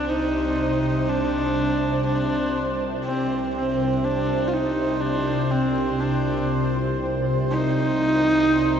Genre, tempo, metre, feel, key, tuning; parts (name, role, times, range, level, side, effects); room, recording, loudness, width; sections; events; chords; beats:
dark ambient drone; 61 BPM; 4/4; straight; A4 = 442 Hz
rich horsehead fiddle; melody; 0.0-8.8 s; C4 to F4; -23 LUFS; equal; diffuse ambient delay
dark analog pad; sustained chords; 0.0-8.8 s; C4 to D5; -37 LUFS; right 1 dB
organ-like drone; drone; 0.0-8.8 s; C2 to C3; -25 LUFS; equal; ensemble chorus, built-in reverb
bubbling stepped-filter texture; texture; 0.0-8.8 s; C5; -28 LUFS; right 3 dB; chorus, built-in reverb
wet huge ambient reverb, RT60 7.6 s; in a vast, echoing space, nothing above 7.8 kHz; -20 LUFS; side -8 dB against mid
0.0-8.8 A section
0.0 Cmadd9
0.09 1.09 2.08 | 3.07 4.05 5.04 6.02 | 7.01 8.00